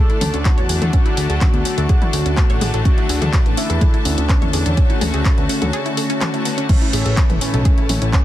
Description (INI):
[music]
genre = melodic techno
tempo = 125 BPM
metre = 4/4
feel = straight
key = unclear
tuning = A4 = 440 Hz
[part]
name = fat analog lead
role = melody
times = 0.0-8.2 s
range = C#4 to A4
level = -26 LUFS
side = equal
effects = tape echo
[part]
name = rich studio string section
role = sustained chords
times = 0.0-8.2 s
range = E4 to A5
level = -30 LUFS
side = left 4 dB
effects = sidechain pumping
[part]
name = wide unison pluck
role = arpeggios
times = 0.0-8.2 s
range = B3 to C#5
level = -27 LUFS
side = right 1 dB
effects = vintage 12-bit sampler grit, sidechain pumping, tape echo
[part]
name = brassy analog pad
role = stabs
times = 0.0-8.2 s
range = A2 to F#4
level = -25 LUFS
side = left 3 dB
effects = lush chorus, sidechain pumping, tape echo
[part]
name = house drum kit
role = drums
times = 0.1-8.2 s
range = crash cymbal, handclaps, hi-hat, toms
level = -24 LUFS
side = left 2 dB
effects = none
[part]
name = fat analog bass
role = bass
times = 0.2-8.2 s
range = E1 to E2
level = -20 LUFS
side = equal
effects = tube saturation, sidechain pumping
[part]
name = electronic kick drum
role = drums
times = 0.5-8.2 s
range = none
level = -15 LUFS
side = equal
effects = none
[sound]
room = little or no reverb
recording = dense, heavily limited modern master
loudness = -14 LUFS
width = side -13 dB against mid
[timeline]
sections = 0.0-8.2 A section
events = break 5.7-6.7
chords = 0.0 D; 6.7 Aadd9